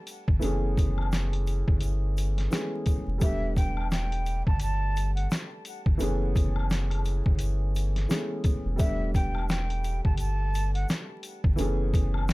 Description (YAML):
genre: hip hop, boom-bap hip-hop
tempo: 86 BPM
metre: 4/4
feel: swing 58% on 16ths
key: E dorian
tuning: A4 = 436 Hz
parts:
  - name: dark grand piano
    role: accompaniment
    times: 0.0-12.3 s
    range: E3 to G#4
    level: -34 LUFS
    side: equal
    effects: cassette tape, high-pass filter, low-pass filter
  - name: trip hop sampler-style drum kit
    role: drums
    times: 0.1-12.3 s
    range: hi-hat, kick drum, snare drum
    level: -27 LUFS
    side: equal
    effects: none
  - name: tube shaker and woodblock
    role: percussion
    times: 0.1-12.3 s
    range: none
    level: -42 LUFS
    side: left 5 dB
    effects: none
  - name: warm sub bass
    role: bass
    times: 0.3-12.3 s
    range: E1 to G1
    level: -28 LUFS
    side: equal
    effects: none
  - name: breathy mellow concert flute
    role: melody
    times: 3.2-10.9 s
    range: E5 to A5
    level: -37 LUFS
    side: right 1 dB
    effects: high-pass filter, low-pass filter, ping-pong delay
room: little or no reverb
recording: vinyl crackle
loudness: -25 LUFS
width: side -21 dB against mid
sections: 0.0-12.3 A section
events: none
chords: 0.4 F#m11; 3.2 Em7; 6.0 F#m11; 8.8 Em7; 11.6 F#m11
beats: | 0.42 1.12 1.82 2.52 | 3.21 3.91 4.61 5.31 | 6.01 6.70 7.40 8.10 | 8.80 9.49 10.19 10.89 | 11.59 12.29